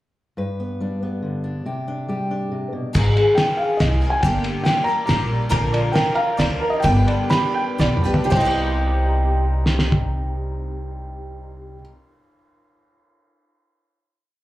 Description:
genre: indie folk with a building arrangement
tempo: 112-140 BPM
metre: 3/4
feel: straight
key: C minor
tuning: A4 = 440 Hz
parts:
  - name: fingerpicked steel-string acoustic guitar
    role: accompaniment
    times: 0.4-2.9 s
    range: G2 to B4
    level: -25 LUFS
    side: left 1 dB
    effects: none
  - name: picked twelve-string acoustic guitar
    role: accompaniment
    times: 2.9-12.0 s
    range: G2 to B4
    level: -24 LUFS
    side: left 2 dB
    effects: ensemble chorus, slapback echo
  - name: cloth-damped thuddy drum kit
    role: drums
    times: 2.9-10.0 s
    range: crash cymbal, kick drum, ride cymbal, snare drum, toms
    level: -23 LUFS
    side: equal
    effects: none
  - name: upright bass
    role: bass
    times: 3.0-11.8 s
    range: G1 to D2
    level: -21 LUFS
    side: equal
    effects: none
  - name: felt-muted upright piano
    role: melody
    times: 3.4-11.8 s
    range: Eb5 to B5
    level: -24 LUFS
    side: equal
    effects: slapback echo
  - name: warm upright piano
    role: arpeggios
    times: 5.5-11.9 s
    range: G4 to Bb5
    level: -26 LUFS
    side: right 3 dB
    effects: slapback echo
room: light reverb, small room ambience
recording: live gig heard through the venue's PA, club reverb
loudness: -18 LUFS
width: side -15 dB against mid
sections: 0.4-2.9 intro; 2.9-8.3 pre-chorus; 8.3-11.5 final chord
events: slowing down 5.5-8.3; drum fill 7.8-8.3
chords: 0.4 G; 1.7 Csus2; 2.9 Ab; 4.2 Gm; 5.5 Bbadd9; 6.8 G; 8.3 Cm

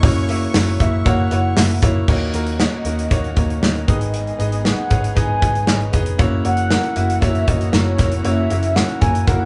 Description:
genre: piano-driven pop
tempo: 117 BPM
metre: 4/4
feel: straight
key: F# mixolydian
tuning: A4 = 439 Hz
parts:
  - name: mellow horn-like synth lead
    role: melody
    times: 0.0-9.5 s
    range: C#5 to G#5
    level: -27 LUFS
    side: equal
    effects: chorus
  - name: warm studio violin section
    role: second line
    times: 0.0-2.0 s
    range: C#5 to C#6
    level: -35 LUFS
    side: equal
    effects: none
  - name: bright upright piano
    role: accompaniment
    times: 0.0-9.5 s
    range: G#2 to E5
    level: -25 LUFS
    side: equal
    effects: none
  - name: vintage muted picked electric bass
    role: bass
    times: 0.0-9.5 s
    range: E#1 to D#2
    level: -23 LUFS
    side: equal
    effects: none
  - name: modern studio drum kit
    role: drums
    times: 0.0-9.4 s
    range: crash cymbal, hi-hat, kick drum, snare drum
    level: -20 LUFS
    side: equal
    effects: none
  - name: warm symphonic string section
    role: sustained chords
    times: 2.1-9.5 s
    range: D#3 to G#4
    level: -34 LUFS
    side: equal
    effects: none
room: moderate studio reverb, RT60 0.6 s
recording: band playing live in one room, nothing above 10.7 kHz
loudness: -18 LUFS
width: mono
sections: 0.0-2.1 A section; 2.1-9.5 B section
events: none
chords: 0.0 F#7; 2.1 D#m7; 3.9 G#m; 6.2 F#7

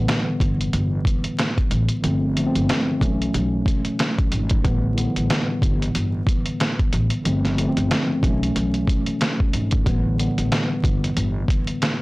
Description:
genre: hip hop, boom-bap hip-hop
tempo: 92 BPM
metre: 4/4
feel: swing 58% on 16ths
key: unclear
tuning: A4 = 440 Hz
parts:
  - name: mellow tine electric piano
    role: accompaniment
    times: 0.0-12.0 s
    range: G2 to C#4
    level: -24 LUFS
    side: equal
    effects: medium stereo tremolo, cassette tape, high-pass filter, low-pass filter
  - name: upright bass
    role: bass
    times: 0.0-11.4 s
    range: G1 to B1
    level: -24 LUFS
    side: equal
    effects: none
  - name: trip hop sampler-style drum kit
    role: drums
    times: 0.1-12.0 s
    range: hi-hat, kick drum, snare drum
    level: -22 LUFS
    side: equal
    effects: none
room: light reverb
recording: blown-out, overdriven recording, vinyl crackle, overdrive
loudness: -19 LUFS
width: side -22 dB against mid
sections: 0.0-12.0 A section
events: none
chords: 0.0 A9sus4; 2.0 G9sus4; 3.0 B9sus4; 4.6 A9sus4; 7.3 G9sus4; 8.2 B9sus4; 9.9 A9sus4

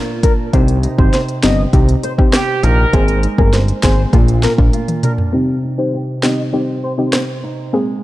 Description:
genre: dancehall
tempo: 100 BPM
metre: 4/4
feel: straight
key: C minor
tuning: A4 = 437 Hz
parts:
  - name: nylon-string guitar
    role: arpeggios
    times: 0.0-8.0 s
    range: Bb2 to C5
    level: -22 LUFS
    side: right 2 dB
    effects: low-pass filter, tape echo
  - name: warm velvety synth lead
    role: melody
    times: 0.2-6.9 s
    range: Bb4 to Eb5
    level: -24 LUFS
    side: left 2 dB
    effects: chorus, low-pass filter, tape echo
  - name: afro-pop drum kit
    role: drums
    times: 0.2-7.3 s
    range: hi-hat, kick drum, rim click, snare drum, toms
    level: -15 LUFS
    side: equal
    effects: vintage 12-bit sampler grit
  - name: soft round pluck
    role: accompaniment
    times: 0.5-8.0 s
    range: Bb3 to Ab4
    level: -19 LUFS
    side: left 2 dB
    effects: chorus, low-pass filter
  - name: fat analog bass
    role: bass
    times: 0.5-4.7 s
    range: G1 to C2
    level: -14 LUFS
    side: equal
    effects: none
  - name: warm horn section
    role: second line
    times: 2.3-3.2 s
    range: G4 to Bb4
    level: -18 LUFS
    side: right 2 dB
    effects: tape echo
room: digital ambience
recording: dark, warm production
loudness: -12 LUFS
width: side -16 dB against mid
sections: 0.0-5.3 A section; 5.3-8.0 B section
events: drum fill 4.7-5.3; filter sweep 5.3-8.0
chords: 0.0 Bb; 0.5 Abadd9; 4.1 Bb; 5.3 Cm

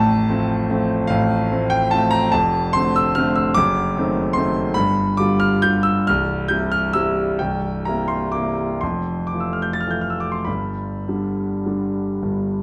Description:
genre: classical, romantic nocturne for solo piano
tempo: 32-51 BPM (dotted quarters)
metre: 6/8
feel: rubato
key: C major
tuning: A4 = 440 Hz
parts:
  - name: clear concert grand piano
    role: solo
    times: 0.0-12.6 s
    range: C1 to A6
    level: -20 LUFS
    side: equal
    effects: none
room: moderate recital hall reverb, RT60 1.6 s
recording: close, detailed microphones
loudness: -20 LUFS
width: mono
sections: 0.0-12.6 A section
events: none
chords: 0.0 F/A; 2.3 Dm7/F; 3.6 F#dim7; 4.8 G5; 6.1 C; 7.4 C7; 8.8 Fmaj7; 10.5 G

